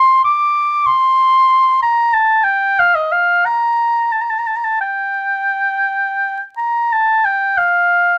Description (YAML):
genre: classical, baroque-style fantasia for unaccompanied oboe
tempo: 84-97 BPM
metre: 3/4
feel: rubato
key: G minor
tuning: A4 = 442 Hz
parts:
  - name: warm oboe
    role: solo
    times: 0.0-8.2 s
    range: Eb5 to D6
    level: -14 LUFS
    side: equal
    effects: none
room: moderate studio reverb, RT60 0.6 s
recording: vinyl crackle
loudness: -15 LUFS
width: mono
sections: 0.0-6.9 A section; 6.9-8.2 A section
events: none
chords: none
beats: 0.24 | 0.87 1.50 2.14 | 2.79 3.47 4.13 | 4.83 5.53 6.22 | 6.91 7.57